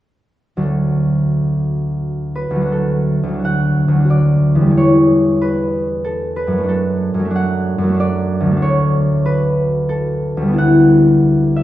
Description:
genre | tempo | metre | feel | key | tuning
classical, solo harp piece | 79-98 BPM | 3/4 | rubato | D major | A4 = 440 Hz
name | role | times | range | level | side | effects
concert harp | solo | 0.6-11.6 s | D2 to F#5 | -13 LUFS | equal | none
room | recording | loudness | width
wet recital hall reverb, RT60 1.7 s | minimal, uncompressed stereo recording | -13 LUFS | side -14 dB against mid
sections
0.7-2.7 A section; 2.7-11.6 B section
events
none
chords
0.7 D; 4.8 A7/E; 6.7 D/F#; 8.6 D; 10.6 Em7/D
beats
| 0.66 1.33 2.00 | 2.72 3.44 4.11 | 4.76 5.41 6.05 | 6.69 7.36 8.00 | 8.62 9.26 9.90 | 10.58 11.23

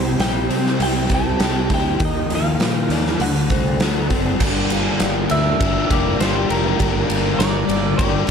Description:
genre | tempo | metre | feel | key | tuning
rock, shoegaze and dream pop | 100 BPM | 4/4 | straight | G minor from 4.4 s | A4 = 440 Hz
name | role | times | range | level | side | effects
clean electric guitar | melody | 0.0-8.3 s | Bb4 to A5 | -25 LUFS | right 1 dB | lush chorus, slapback echo
soft string machine | sustained chords | 0.0-8.3 s | Eb4 to A5 | -31 LUFS | equal | none
picked twelve-string acoustic guitar | arpeggios | 0.0-8.3 s | E4 to D5 | -30 LUFS | right 8 dB | wide subtle chorus, slapback echo
overdriven semi-hollow guitar | riff | 0.0-8.3 s | G2 to G4 | -22 LUFS | left 11 dB | analog chorus
overdriven semi-hollow guitar | riff | 0.0-8.3 s | G2 to F4 | -26 LUFS | right 12 dB | reverse reverb
growling fingered electric bass | bass | 0.0-8.3 s | F1 to C3 | -23 LUFS | right 1 dB | overdrive
huge arena drum kit | drums | 0.2-8.3 s | crash cymbal, hi-hat, kick drum, ride cymbal, snare drum | -22 LUFS | equal | none
room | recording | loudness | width
light reverb, small room ambience | none | -16 LUFS | side -6 dB against mid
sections
0.0-4.4 A section; 4.4-8.3 B section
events
none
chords
0.0 C; 2.0 Ebadd9; 3.2 D7; 4.4 Gm7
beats
0.20 0.80 1.40 | 2.00 2.60 3.20 3.80 | 4.40 5.00 5.60 6.20 | 6.79 7.39 7.99

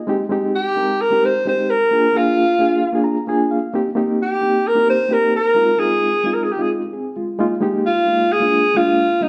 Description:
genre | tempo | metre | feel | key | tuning
soul | 132 BPM | 4/4 | straight | unclear | A4 = 437 Hz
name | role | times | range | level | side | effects
barky reed electric piano | accompaniment | 0.0-9.3 s | G3 to Bb5 | -22 LUFS | equal | overdrive, fast tremolo
warm alto saxophone | melody | 0.6-9.3 s | Eb4 to C5 | -18 LUFS | equal | none
room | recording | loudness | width
wet large studio reverb, RT60 1.4 s | band playing live in one room | -17 LUFS | mono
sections
0.0-9.3 A section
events
reed electric piano fill 2.8-3.7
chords
0.1 Abmaj7; 1.9 Bb7; 3.7 Eb6; 5.6 Fm7; 7.4 Bb7sus4; 8.3 Bb7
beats
| 0.08 0.54 0.99 1.45 | 1.91 2.36 2.82 3.28 | 3.73 4.19 4.65 5.10 | 5.56 6.01 6.47 6.93 | 7.38 7.84 8.30 8.75 | 9.21

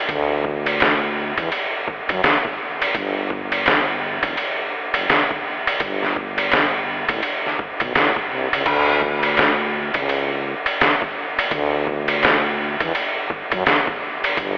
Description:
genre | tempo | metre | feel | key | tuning
hip hop, jazz-hop | 84 BPM | 4/4 | swing 60% on 16ths | D major | A4 = 440 Hz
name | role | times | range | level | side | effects
growling FM bass | bass | 0.1-14.6 s | E1 to F#2 | -25 LUFS | equal | none
trip hop sampler-style drum kit | drums | 0.1-14.6 s | crash cymbal, hi-hat, kick drum, ride cymbal, snare drum | -19 LUFS | equal | none
room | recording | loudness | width
moderate huge ambient reverb, RT60 7.5 s | dreamy mix soaked in reverb, vinyl crackle, telephone sound | -17 LUFS | side -26 dB against mid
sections
0.0-8.7 A section; 8.7-14.6 B section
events
none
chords
none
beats
| 0.09 0.81 1.52 2.23 | 2.95 3.66 4.38 5.09 | 5.81 6.52 7.23 7.95 | 8.66 9.38 10.09 10.81 | 11.52 12.23 12.95 13.66 | 14.38

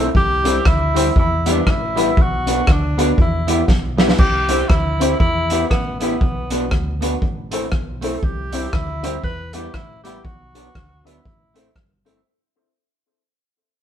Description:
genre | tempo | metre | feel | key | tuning
ska | 119 BPM | 4/4 | swing 60% on 8ths | E minor | A4 = 440 Hz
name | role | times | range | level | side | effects
electric guitar at the edge of break-up | accompaniment | 0.0-12.2 s | F#3 to G4 | -26 LUFS | right 6 dB | none
dark upright piano | stabs | 0.0-12.2 s | B3 to C5 | -23 LUFS | left 5 dB | analog delay
fingered electric bass | bass | 0.0-12.2 s | G1 to E2 | -24 LUFS | equal | none
vintage drum kit | drums | 0.1-12.2 s | crash cymbal, hi-hat, kick drum, rim click, snare drum | -18 LUFS | equal | none
mellow tenor saxophone | melody | 0.2-11.8 s | B3 to B4 | -22 LUFS | equal | none
room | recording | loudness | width
moderate stone room reverb, RT60 1.1 s | band playing live in one room | -16 LUFS | side -9 dB against mid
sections
0.0-4.2 A section; 4.2-12.3 B section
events
drum fill 3.7-4.2; fade-out 4.2-12.3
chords
0.2 C; 1.2 Em; 2.2 Bm; 3.2 Em; 4.2 C; 5.2 Em; 6.2 Bm; 7.2 Am; 8.2 C; 9.2 Em; 10.2 Bm; 11.2 Am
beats
| 0.15 0.66 1.17 1.67 | 2.17 2.68 3.18 3.69 | 4.19 4.70 5.20 5.71 | 6.21 6.71 7.22 7.72 | 8.22 8.73 9.23 9.74 | 10.24 10.74 11.25 11.75

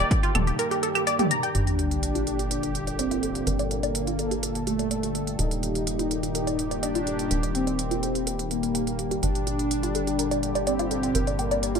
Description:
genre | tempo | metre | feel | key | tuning
melodic techno | 125 BPM | 4/4 | straight | G minor | A4 = 439 Hz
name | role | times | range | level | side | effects
sweeping resonant pad | sustained chords | 0.0-11.8 s | Bb2 to A4 | -31 LUFS | equal | chorus, sidechain pumping
tight sequenced synth | arpeggios | 0.0-11.8 s | F4 to Bb5 | -30 LUFS | equal | chorus, phaser, sidechain pumping, tape echo
tight sequencer bass | bass | 0.0-11.8 s | Eb1 to G1 | -31 LUFS | equal | sidechain pumping
overtone-sweeping drone | drone | 0.0-11.8 s | G2 to G3 | -36 LUFS | left 3 dB | chorus, built-in reverb, sidechain pumping
techno drum kit | drums | 0.1-11.8 s | claves, hi-hat, toms | -31 LUFS | right 1 dB | sidechain pumping on hats, sidechain pumping on perc, sidechain pumping on toms
soft supersaw | melody | 1.5-11.8 s | A3 to Eb4 | -29 LUFS | equal | wide subtle chorus, sidechain pumping, low-pass filter, tape echo
sub drop | sound effects | 1.5-3.5 s | none | -30 LUFS | equal | none
room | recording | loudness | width
light reverb | dark, warm production | -23 LUFS | side -6 dB against mid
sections
0.0-1.6 A section; 1.6-11.8 B section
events
filter sweep on synth arpeggio sound 0.0-1.6, 1.6-11.8; impact 1.6-3.5; filter sweep on supersaw synth 1.6-11.8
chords
0.0 Eb; 1.6 Gm; 5.4 Eb; 9.2 Gm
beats
0.11 0.59 1.07 | 1.55 2.03 2.51 2.99 | 3.47 3.95 4.43 4.91 | 5.39 5.87 6.35 6.83 | 7.31 7.79 8.27 8.75 | 9.23 9.71 10.19 10.67 | 11.15 11.63

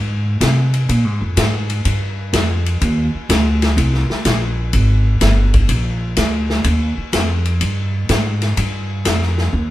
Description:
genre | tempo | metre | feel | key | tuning
jazz, big band swing | 125 BPM | 4/4 | swing 68% on 8ths | Eb major | A4 = 440 Hz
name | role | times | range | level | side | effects
upright bass | bass | 0.0-9.7 s | G1 to C3 | -16 LUFS | equal | none
swinging big-band drum kit | drums | 0.4-9.5 s | hi-hat, kick drum, ride cymbal, snare drum | -20 LUFS | left 1 dB | none
room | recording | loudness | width
moderate stone room reverb, RT60 1.2 s | band playing live in one room | -14 LUFS | side -15 dB against mid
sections
0.0-9.7 A section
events
drum fill 9.5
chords
none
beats
0.41 | 0.89 1.37 1.85 2.33 | 2.81 3.30 3.78 4.26 | 4.74 5.22 5.70 6.18 | 6.66 7.14 7.62 8.10 | 8.58 9.06 9.54

